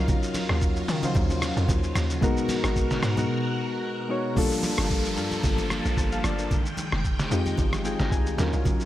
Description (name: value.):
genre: amapiano.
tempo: 112 BPM.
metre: 4/4.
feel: swing 55% on 16ths.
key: unclear.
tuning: A4 = 440 Hz.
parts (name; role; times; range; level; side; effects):
soft electric-piano-like synth keys; accompaniment; 0.0-8.9 s; Gb3 to Bb5; -28 LUFS; left 2 dB; chorus.
string machine, violins; sustained chords; 0.0-8.9 s; Cb3 to G5; -32 LUFS; right 1 dB; phaser, ensemble chorus, sidechain pumping.
hollow log drum bass; bass; 0.0-8.6 s; F1 to Eb3; -27 LUFS; equal; none.
lo-fi sampler-style drum kit; drums; 0.1-8.9 s; hi-hat, kick drum, rim click, shaker, snare drum; -27 LUFS; equal; none.
congas; percussion; 0.1-8.8 s; none; -35 LUFS; right 2 dB; none.
downlifter; sound effects; 4.4-8.7 s; none; -35 LUFS; equal; none.
room: light reverb.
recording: none.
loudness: -23 LUFS.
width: side -14 dB against mid.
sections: 0.0-4.4 A section; 4.4-8.9 B section.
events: drop 0.0-4.4; break 3.3-4.4; synth keys fill 7.6-8.7.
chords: 0.0 Ebm9; 2.2 Abm9; 4.4 Gm9; 6.5 Fm9.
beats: | 0.08 0.62 1.15 1.69 | 2.22 2.76 3.29 3.83 | 4.37 4.90 5.44 5.97 | 6.51 7.04 7.58 8.12 | 8.65.